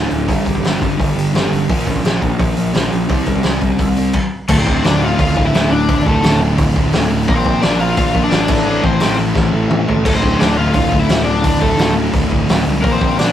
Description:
punk rock; 172 BPM; 4/4; straight; D minor; A4 = 440 Hz
sludgy distorted guitar; riff; 0.0-13.3 s; D2 to Bb4; -23 LUFS; right 1 dB; overdrive
thick fuzz guitar; riff; 0.0-13.3 s; D2 to C4; -18 LUFS; equal; distortion
fuzz picked electric bass; bass; 0.0-13.3 s; D1 to C2; -21 LUFS; equal; overdrive
loose indie drum kit; drums; 0.1-13.3 s; crash cymbal, hi-hat, kick drum, snare drum, toms; -17 LUFS; equal
cranked stack guitar; melody; 4.5-13.3 s; A3 to F5; -18 LUFS; left 3 dB; overdrive
light reverb; rough rehearsal-room recording; -12 LUFS; side -10 dB against mid
0.0-4.5 A section; 4.5-13.3 B section
stop 4.2-4.5; drum fill 9.4-10.1
0.3 G5; 1.7 Bb5; 3.1 C5; 4.5 Dm; 7.3 Bb; 8.5 Am; 10.1 Dm

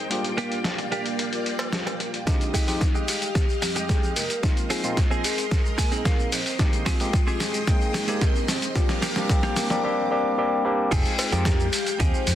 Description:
nu-disco, nu disco; 111 BPM; 4/4; straight; F dorian; A4 = 444 Hz
barky tine electric piano; accompaniment; 0.0-11.5 s; G3 to G5; -28 LUFS; left 1 dB; overdrive, sidechain pumping, dub echo
string machine, full ensemble; sustained chords; 0.0-12.3 s; Ab3 to D6; -33 LUFS; equal; phaser, ensemble chorus, sidechain pumping
dusty soul sampler-style drum kit; drums; 0.1-12.3 s; cabasa, crash cymbal, hi-hat, snare drum; -28 LUFS; equal; overdrive, low-pass filter on hats, low-pass filter on snare, low-pass filter on perc, low-pass filter on cymbals, low-pass filter on room
direct-recorded clean electric guitar; riff; 0.4-12.3 s; Ab3 to Ab5; -31 LUFS; right 2 dB; wide subtle chorus, low-pass filter
cowbell; percussion; 1.6-2.0, 11.2-11.3 s; -33 LUFS; equal
soft octave-layered synth lead; melody; 2.3-12.3 s; D4 to C5; -32 LUFS; left 2 dB; chorus, phaser, tape echo
vintage muted fingered electric bass; bass; 2.3-12.3 s; F1 to Bb2; -32 LUFS; equal; high-pass filter
electronic kick drum; drums; 2.3-12.1 s; -23 LUFS; equal
light reverb; dense, heavily limited modern master; -21 LUFS; side -12 dB against mid
0.0-2.3 A section; 2.3-10.9 B section; 10.9-12.3 C section
filter sweep on string machine 0.0-2.3; build-up 2.3-10.9; drum fill 2.3-9.8; filter sweep on clean electric guitar 2.3-10.9; clean electric guitar fill 5.5-6.6; drop 10.9-12.3
0.1 Gm7; 2.3 Fm9; 4.4 Bb9sus4; 6.6 Abmaj7; 8.8 Gm7; 10.9 Fm9

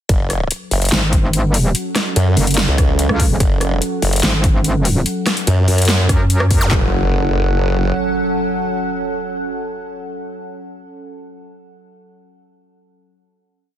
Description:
heavy wobble dubstep; 145 BPM; 4/4; half-time; F# minor; A4 = 440 Hz
evolving wavetable pad; sustained chords; 0.7-9.9 s; F#3 to F#5; -23 LUFS; right 2 dB; chorus, built-in reverb, sidechain pumping
formant-sweep wobble bass; bass; 0.1-7.9 s; F#1 to F#2; -16 LUFS; equal; chorus, overdrive
dubstep drum kit; drums; 0.1-6.8 s; handclaps, kick drum; -16 LUFS; equal; studio reverb
dubstep drum kit; drums; 0.1-6.6 s; hi-hat, rim click, snare drum; -19 LUFS; left 1 dB; studio reverb
metallic wobble bass; bass; 0.9-6.7 s; E1 to F#2; -16 LUFS; equal; chorus, overdrive
zap and impact; sound effects; 6.6-10.0 s; -24 LUFS; equal
light reverb; dense, heavily limited modern master; -14 LUFS; side -10 dB against mid
0.1-6.7 drop; 6.7-10.0 final chord
drop 0.1-6.7
0.1 F#m

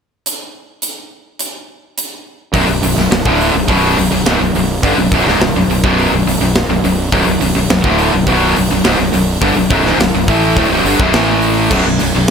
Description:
heavy metal; 105 BPM; 4/4; straight; B minor; A4 = 439 Hz
tight metal drum kit; drums; 0.3-12.3 s; crash cymbal, hi-hat, kick drum, snare drum; -17 LUFS; equal
high-gain distorted guitar; riff; 2.5-12.3 s; B1 to A3; -15 LUFS; right 10 dB; distortion
tight distorted guitar; riff; 2.5-12.3 s; B1 to A3; -15 LUFS; left 11 dB; distortion
fuzz fingered electric bass; bass; 2.5-12.3 s; B0 to A1; -19 LUFS; equal; overdrive
light reverb; -11 LUFS; side -6 dB against mid
0.3-2.5 A section; 2.5-12.3 B section
0.3 N.C.; 2.5 Bm; 11.1 A5; 11.7 B5

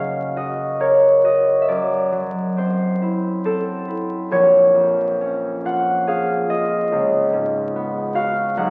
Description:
classical, solo harp piece; 64-73 BPM; 3/4; rubato; A4 = 439 Hz
concert harp; solo; 0.0-8.7 s; A#1 to F#5; -19 LUFS; equal
wet recital hall reverb, RT60 1.6 s; very old 78 rpm record, vinyl crackle; -19 LUFS; mono
0.0-8.7 A section
0.0 F#6; 1.7 D9/F#; 4.3 A#m7; 6.9 C#9sus4

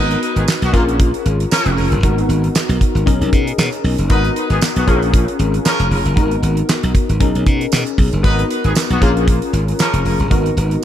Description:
early-eighties boogie funk; 116 BPM; 4/4; swing 56% on 16ths; G# dorian; A4 = 440 Hz
warm horn section; second line; 0.0-10.0 s; C#3 to B4; -22 LUFS; equal; diffuse ambient delay
funky polysynth comp; accompaniment; 0.0-10.8 s; A#3 to A#4; -20 LUFS; left 3 dB; chorus
glassy slap bass; bass; 0.0-10.8 s; E#1 to B2; -17 LUFS; equal
damped 70s drum kit; drums; 0.1-10.8 s; handclaps, hi-hat, kick drum, snare drum; -17 LUFS; equal
tambourine; percussion; 0.5-9.9 s; -28 LUFS; right 12 dB
small room ambience; -13 LUFS; side -11 dB against mid
0.0-10.8 A section
0.0 G#m9; 0.7 A#m7; 2.0 G#m9; 3.1 Bmaj13; 4.1 G#m9; 4.9 A#m7; 6.2 G#m9; 7.2 Bmaj13; 8.2 G#m9; 9.0 A#m7; 10.3 G#m9

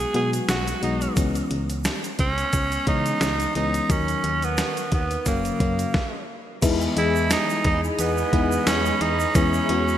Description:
1980s-style pop; 88 BPM; 4/4; swing 55% on 16ths; A4 = 438 Hz
raspy tenor saxophone; melody; 0.0-10.0 s; A#3 to G#4; -25 LUFS; right 3 dB; shimmer reverb, digital delay
FM electric piano; accompaniment; 0.0-10.0 s; C#3 to D#5; -26 LUFS; left 3 dB; chorus, shimmer reverb
solid FM bass; bass; 0.0-10.0 s; F#1 to C#3; -28 LUFS; equal
clean 12-bit digital drum machine; drums; 0.1-9.9 s; crash cymbal, hi-hat, kick drum, snare drum, tambourine; -25 LUFS; equal; overdrive, gated reverb
egg shaker; percussion; 0.3-10.0 s; -39 LUFS; right 7 dB
string machine, cellos; sustained chords; 6.6-10.0 s; G#4 to C#6; -30 LUFS; equal; ensemble chorus, shimmer reverb
moderate lush hall reverb, RT60 2.7 s; bright 1980s-style digital production; -20 LUFS; side -11 dB against mid
0.0-6.6 A section; 6.6-10.0 B section
stop 5.9-6.6
0.0 B6; 1.2 C#m7; 3.9 D#m; 5.3 F#; 6.6 Emaj7; 9.4 C#m7/E

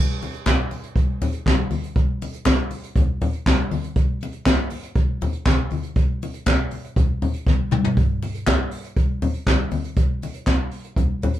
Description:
disco; 120 BPM; 4/4; straight
jazz brush drum kit; drums; 0.2-11.4 s; handclaps, hi-hat, kick drum, snare drum, toms; -20 LUFS; equal
congas; percussion; 0.2-11.3 s; -26 LUFS; left 3 dB
moderate studio ambience, RT60 0.5 s; band playing live in one room; -19 LUFS; side -12 dB against mid
0.0-11.4 A section
drum fill 7.5-8.0

